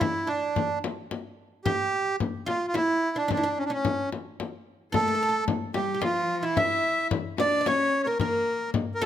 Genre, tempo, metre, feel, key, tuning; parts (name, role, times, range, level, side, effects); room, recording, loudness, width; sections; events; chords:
Arabic maqam ensemble; 110 BPM; 3/4; straight; A4 = 440 Hz
accordion; melody; 0.0-9.1 s; C#4 to E5; -26 LUFS; right 2 dB
oud; second line; 0.0-9.1 s; C#4 to E5; -32 LUFS; right 2 dB
frame drum; percussion; 0.0-9.1 s; -30 LUFS; left 5 dB
rich cello; second line; 4.9-9.1 s; E3 to E4; -33 LUFS; left 7 dB
light reverb; close, detailed microphones; -24 LUFS; side -10 dB against mid
0.0-9.1 A section